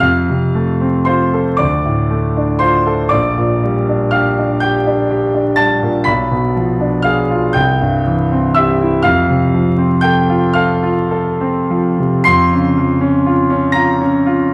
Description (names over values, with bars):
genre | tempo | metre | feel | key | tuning
classical, romantic nocturne for solo piano | 34-42 BPM (dotted quarters) | 6/8 | rubato | F major | A4 = 440 Hz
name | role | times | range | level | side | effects
bright concert grand piano | solo | 0.0-14.5 s | Bb1 to C7 | -14 LUFS | equal | none
room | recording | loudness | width
wet recital hall reverb, RT60 1.4 s | dark, warm production, vinyl crackle | -14 LUFS | mono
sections
0.0-14.5 A section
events
none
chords
0.0 F; 1.6 Dm; 3.1 Gm/Bb; 6.1 Bdim7; 7.5 C; 9.0 F; 12.3 Bbm/F